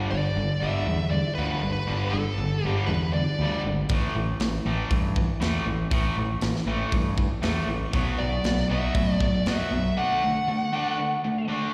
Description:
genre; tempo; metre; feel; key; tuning
hard rock; 119 BPM; 4/4; straight; unclear; A4 = 440 Hz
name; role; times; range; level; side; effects
biting overdriven guitar; riff; 0.0-11.7 s; G2 to D4; -30 LUFS; equal; spring reverb, slapback echo
crunchy overdriven guitar; riff; 0.0-11.7 s; G2 to D4; -37 LUFS; equal; none
growling picked electric bass; bass; 0.0-9.9 s; G1 to A2; -30 LUFS; equal; overdrive
nasal lead guitar with a parked wah; melody; 0.1-3.6, 8.2-11.5 s; A4 to F#5; -31 LUFS; equal; overdrive, slapback echo, digital delay
tight metal drum kit; drums; 3.9-9.6 s; hi-hat, kick drum, snare drum; -30 LUFS; equal; none
room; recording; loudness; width
moderate club reverb, RT60 0.5 s; live gig heard through the venue's PA, recital hall reverb; -26 LUFS; mono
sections
0.0-11.7 A section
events
none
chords
0.0 G5; 3.9 A5; 7.9 Bm; 10.0 D

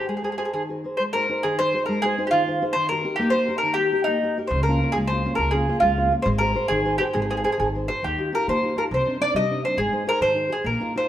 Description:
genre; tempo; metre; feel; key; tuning
italian folk, Italian serenade; 136 BPM (dotted quarters); 6/8; rubato; Ab major, Eb major from 8.0 s; A4 = 438 Hz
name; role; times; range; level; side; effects
mandolin; melody; 0.0-11.1 s; Eb4 to Eb5; -22 LUFS; equal; none
nylon-string guitar; accompaniment; 0.0-11.1 s; C3 to C5; -26 LUFS; left 1 dB; none
upright bass; bass; 4.5-10.7 s; Ab1 to Eb3; -27 LUFS; equal; none
room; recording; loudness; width
moderate stone room reverb, RT60 1.3 s; band playing live in one room; -20 LUFS; side -12 dB against mid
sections
1.0-8.0 A section; 8.0-11.1 B section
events
none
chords
0.0 Abadd9; 1.0 Ab; 2.8 Eb; 4.5 Db6; 6.3 Abadd9; 8.0 Ebadd9; 8.9 Cmadd9; 9.8 Ab; 10.7 Bbsus4

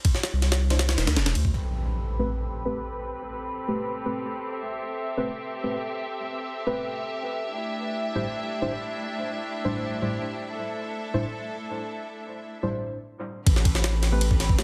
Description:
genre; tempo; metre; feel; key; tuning
drum and bass, jungle; 161 BPM; 4/4; straight; A minor; A4 = 441 Hz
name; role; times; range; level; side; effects
jungle sampler-style drum kit; drums; 0.0-1.5, 13.5-14.6 s; kick drum, ride cymbal, snare drum; -26 LUFS; equal; studio reverb
saturated sub bass; bass; 0.3-1.5, 13.5-14.6 s; E1 to D2; -25 LUFS; equal; none
deep mellow chord stab; stabs; 0.7-14.6 s; A2 to C5; -33 LUFS; equal; chorus, dub echo
clear studio string section; sustained chords; 1.5-14.6 s; A3 to E5; -34 LUFS; equal; low-pass filter
impact; sound effects; 1.5-3.0 s; none; -33 LUFS; equal; none
room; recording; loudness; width
light reverb, digital ambience; dense, heavily limited modern master; -28 LUFS; mono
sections
0.0-1.5 A section; 1.5-13.5 B section; 13.5-14.6 C section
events
impact 1.5-3.0; filter sweep on string section 1.5-13.5; drop 13.5-14.6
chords
0.0 Am7 (rootless); 1.5 Am9; 7.5 Cadd9/A; 13.5 Am9

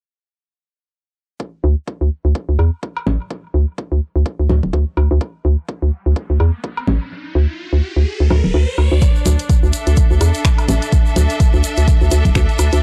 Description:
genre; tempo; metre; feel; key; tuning
minimal techno; 126 BPM; 4/4; swing 57% on 16ths; unclear; A4 = 440 Hz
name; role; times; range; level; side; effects
electronic kick drum; drums; 1.4-12.5 s; none; -17 LUFS; equal; high-pass filter on kick, high-pass filter on room
hollow knocking FM bass; bass; 1.6-12.8 s; D1 to E2; -16 LUFS; equal; sidechain pumping
woodblock and congas; percussion; 2.6-12.7 s; none; -26 LUFS; equal; overdrive, tape echo
riser; sound effects; 6.2-9.0 s; none; -31 LUFS; equal; none
punchy analog drum machine; drums; 9.0-12.8 s; finger snaps, hi-hat; -26 LUFS; equal; none
tube shaker; percussion; 9.0-12.8 s; none; -33 LUFS; equal; none
bright studio string section; texture; 9.0-12.8 s; D4 to E5; -26 LUFS; equal; sidechain pumping
room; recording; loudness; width
little or no reverb; dry, gritty hardware recording, transformer saturation, cassette tape; -16 LUFS; mono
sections
1.4-9.0 A section; 9.0-12.8 B section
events
riser 6.2-9.0; kick drops out 7.1-9.0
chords
1.4 D5

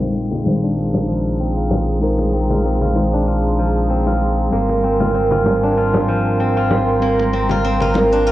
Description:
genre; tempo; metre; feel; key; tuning
organic downtempo; 96 BPM; 4/4; swing 55% on 16ths; Bb mixolydian; A4 = 438 Hz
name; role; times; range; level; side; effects
muted felt-like synth keys; accompaniment; 0.0-8.3 s; Eb3 to C5; -20 LUFS; equal; chorus, analog delay
warm analog pad; sustained chords; 0.0-8.3 s; Ab4 to Eb6; -24 LUFS; right 2 dB; chorus
steel-string zither; arpeggios; 0.0-8.3 s; F3 to Bb4; -21 LUFS; equal; low-pass filter, analog delay
smooth synth bass; bass; 0.0-8.3 s; Ab1 to Bb1; -21 LUFS; equal; tube saturation
congas; percussion; 0.0-8.1 s; none; -24 LUFS; left 2 dB; none
congas; drums; 0.5-8.1 s; none; -22 LUFS; left 1 dB; low-pass filter on perc, cassette tape, low-pass filter on hats, low-pass filter on snare, low-pass filter on cymbals, low-pass filter on room
room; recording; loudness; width
wet spring reverb, RT60 2.6 s; home recording on cassette, low-pass filter; -15 LUFS; side -14 dB against mid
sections
0.0-8.3 A section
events
filter sweep on guzheng 0.0-8.3; filter sweep on analog synth pad 0.0-8.3; filter sweep 0.0-8.3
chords
0.0 Bb9sus4; 4.5 Abmaj9

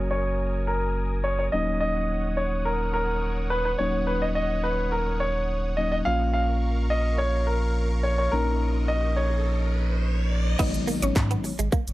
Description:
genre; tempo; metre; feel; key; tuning
dance-pop; 106 BPM; 4/4; straight; Eb minor; A4 = 440 Hz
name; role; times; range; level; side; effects
warm grand piano; melody; 0.0-10.3 s; Bb4 to F5; -27 LUFS; equal; low-pass filter
mellow tine electric piano; accompaniment; 0.0-11.5 s; Eb3 to Gb4; -31 LUFS; left 3 dB; sidechain pumping, low-pass filter
supersaw pad; sustained chords; 0.0-10.6 s; Bb4 to Eb6; -38 LUFS; right 2 dB; sidechain pumping, low-pass filter
sub bass with octave; bass; 0.0-11.9 s; Eb1 to Ab2; -26 LUFS; equal; sidechain pumping
riser and impact; sound effects; 8.0-11.9 s; none; -36 LUFS; equal; none
mallet-like synth pluck; melody; 10.6-11.4 s; Db4 to Eb5; -32 LUFS; left 2 dB; chorus, analog delay
direct-recorded clean electric guitar; riff; 10.6-11.8 s; Ab3 to Cb4; -31 LUFS; right 6 dB; ensemble chorus
organic electronic drum kit; drums; 10.6-11.9 s; crash cymbal, handclaps, hi-hat, kick drum, shaker; -26 LUFS; equal; none
room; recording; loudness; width
little or no reverb; dry, gritty hardware recording, transformer saturation; -23 LUFS; side -17 dB against mid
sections
0.0-10.6 A section; 10.6-11.9 B section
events
riser 8.0-10.6; drop 10.6-11.9; impact 10.6-11.9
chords
0.0 Gb6; 1.5 Ebm7; 6.1 Bbm; 10.6 Abm7

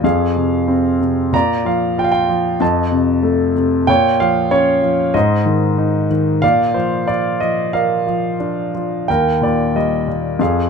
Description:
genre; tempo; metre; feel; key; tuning
classical, lyrical solo piano; 93 BPM; 4/4; rubato; unclear; A4 = 440 Hz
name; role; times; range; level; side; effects
clear concert grand piano; solo; 0.0-10.7 s; Eb2 to Bb5; -14 LUFS; equal; none
room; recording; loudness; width
moderate studio ambience, RT60 0.5 s; minimal, uncompressed stereo recording; -14 LUFS; side -5 dB against mid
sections
0.0-10.7 A section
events
none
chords
0.0 Fm; 1.3 Bb; 2.6 F7; 3.9 Bbm; 5.1 Ab; 6.4 Bb; 9.1 Eb

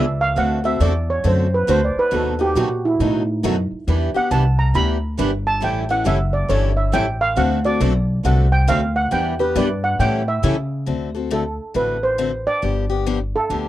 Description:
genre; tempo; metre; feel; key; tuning
acoustic string swing (jazz manouche); 137 BPM; 4/4; swing 63% on 8ths; D mixolydian; A4 = 439 Hz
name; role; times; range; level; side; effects
steel pan; melody; 0.0-13.7 s; D#4 to B5; -21 LUFS; right 2 dB; none
picked acoustic archtop guitar; accompaniment; 0.0-13.7 s; B2 to A4; -24 LUFS; left 8 dB; none
picked steel-string acoustic guitar; accompaniment; 0.0-10.6 s; B2 to B4; -26 LUFS; right 8 dB; none
upright bass; bass; 0.0-13.7 s; F#1 to C#3; -20 LUFS; equal; none
room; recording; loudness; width
light reverb; dry, close 1970s-style studio recording; -17 LUFS; side -14 dB against mid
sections
0.0-10.9 A section; 10.9-13.7 B section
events
steel pan solo 0.0-10.9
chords
0.4 D7; 2.1 B7; 3.9 Em7; 5.6 A7; 7.4 D7; 9.1 Em7; 10.0 A7; 10.9 D7; 12.6 G7

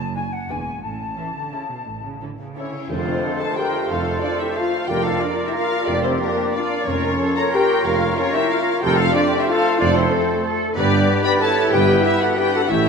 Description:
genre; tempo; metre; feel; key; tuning
classical, orchestral ballroom waltz; 166-201 BPM; 3/4; rubato; F major; A4 = 439 Hz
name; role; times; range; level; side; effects
small flute group; second line; 0.0-12.9 s; C4 to A5; -26 LUFS; left 3 dB; none
muted studio cello section; bass; 0.0-12.9 s; E2 to B4; -28 LUFS; right 2 dB; none
muted studio double bass section; bass; 0.0-12.9 s; E1 to G2; -27 LUFS; right 4 dB; none
muted studio violin section; melody; 0.1-12.9 s; A4 to B5; -25 LUFS; left 3 dB; none
muted studio viola section; accompaniment; 0.1-12.9 s; A3 to B4; -28 LUFS; right 2 dB; none
muted studio violin section; second line; 0.2-12.9 s; E4 to B5; -30 LUFS; left 3 dB; none
cymbal swell and tam-tam; percussion; 0.8-4.2 s; none; -33 LUFS; left 2 dB; none
mellow French horn section; sustained chords; 2.6-12.9 s; A3 to B4; -25 LUFS; left 4 dB; none
bright clarinet; second line; 2.9-12.9 s; F4 to G4; -30 LUFS; left 2 dB; none
warm oboe; second line; 2.9-12.9 s; B4 to D5; -29 LUFS; right 1 dB; none
mellow bassoon; accompaniment; 2.9-12.9 s; A3 to B3; -27 LUFS; right 1 dB; none
mellow tuba; bass; 2.9-12.9 s; F1 to A1; -27 LUFS; right 5 dB; none
room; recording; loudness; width
wet scoring stage reverb, RT60 1.9 s; none; -17 LUFS; side -5 dB against mid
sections
0.0-2.9 A section; 2.9-12.9 B section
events
band accent 2.9-3.2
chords
0.5 E; 0.8 A; 2.9 F; 4.9 Bb/F; 6.9 Bbm/F; 8.8 F; 10.8 G

